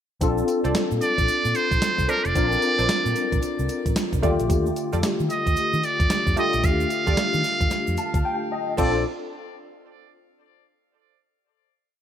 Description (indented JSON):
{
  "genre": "R&B, new jack swing",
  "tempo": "112 BPM",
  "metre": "4/4",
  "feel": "swing 62% on 16ths",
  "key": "Bb major",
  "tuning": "A4 = 441 Hz",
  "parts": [
    { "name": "barky tine electric piano", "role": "accompaniment", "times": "0.2-9.0 s", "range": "D3 to A5", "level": "-25 LUFS", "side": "left 3 dB", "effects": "ensemble chorus" },
    { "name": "vintage muted fingered electric bass", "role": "bass", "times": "0.2-9.0 s", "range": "F1 to Eb3", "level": "-26 LUFS", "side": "equal", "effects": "none" },
    { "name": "clean 12-bit digital drum machine", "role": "drums", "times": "0.2-8.9 s", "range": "crash cymbal, hi-hat, kick drum, snare drum, tambourine", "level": "-26 LUFS", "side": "right 1 dB", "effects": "gated reverb" },
    { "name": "tube shaker", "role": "percussion", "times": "0.2-9.0 s", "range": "none", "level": "-44 LUFS", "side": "right 12 dB", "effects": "none" },
    { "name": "funky polysynth comp", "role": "stabs", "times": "0.6-9.0 s", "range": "F4 to D5", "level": "-32 LUFS", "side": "right 3 dB", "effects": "chorus, ping-pong delay" },
    { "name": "trumpet with metal mute", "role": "melody", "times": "1.0-9.0 s", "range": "Bb4 to F5", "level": "-24 LUFS", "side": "right 2 dB", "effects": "none" }
  ],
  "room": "moderate plate reverb, RT60 2.2 s",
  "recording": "bright 1980s-style digital production",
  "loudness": "-20 LUFS",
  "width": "side -9 dB against mid",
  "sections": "0.2-8.8 chorus; 8.8-10.9 final chord",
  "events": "tine electric piano fill 7.7-8.8; break 8.2-8.8",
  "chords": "0.2 Bbmaj9; 4.2 Ebmaj9#11; 8.8 Bbmaj9"
}